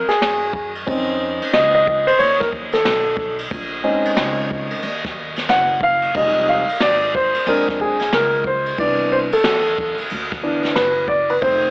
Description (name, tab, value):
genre	hip hop, jazz-hop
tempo	91 BPM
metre	4/4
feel	swing 63% on 16ths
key	unclear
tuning	A4 = 440 Hz
part	dark baby grand piano	accompaniment	0.0-11.7 s	Eb3 to Gb5	-16 LUFS	equal	none
part	upright bass	bass	0.0-11.7 s	F1 to Gb2	-30 LUFS	equal	tube saturation
part	jazz brush drum kit	drums	0.1-11.6 s	hi-hat, kick drum, ride cymbal, snare drum	-22 LUFS	equal	none
room	light reverb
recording	dry, gritty hardware recording, vinyl crackle, AM radio sound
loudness	-16 LUFS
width	side -29 dB against mid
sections	0.0-11.7 A section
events	grand piano solo 0.0-11.7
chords	0.0 Ebmadd11 (rootless); 0.9 F7b13; 3.5 Bbm11; 6.1 Fm7; 7.5 Bb9; 8.8 Cmaj9